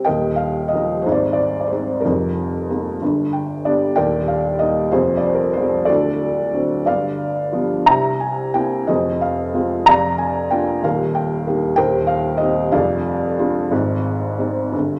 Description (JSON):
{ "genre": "classical, lyrical solo piano", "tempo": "61 BPM (dotted quarters)", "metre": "6/8", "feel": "rubato", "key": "unclear", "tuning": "A4 = 440 Hz", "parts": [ { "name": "felt-muted upright piano", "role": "solo", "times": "0.0-15.0 s", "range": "D1 to Bb5", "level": "-19 LUFS", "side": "equal", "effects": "none" } ], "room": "moderate recital hall reverb, RT60 1.5 s", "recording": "none", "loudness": "-19 LUFS", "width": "mono", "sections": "0.1-15.0 A section", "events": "felt piano fill 3.0-4.0, 14.7", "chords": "0.1 Ebsus2; 1.1 Ab; 2.0 Bb7sus4/F; 3.0 G; 4.0 Ebmaj7; 4.9 Fm; 5.9 D7; 6.9 G7; 7.9 C7; 8.9 Fm; 9.9 Bb/F; 10.8 Eb; 11.8 Cm7/Eb; 12.7 Ddim/F; 13.7 Ab" }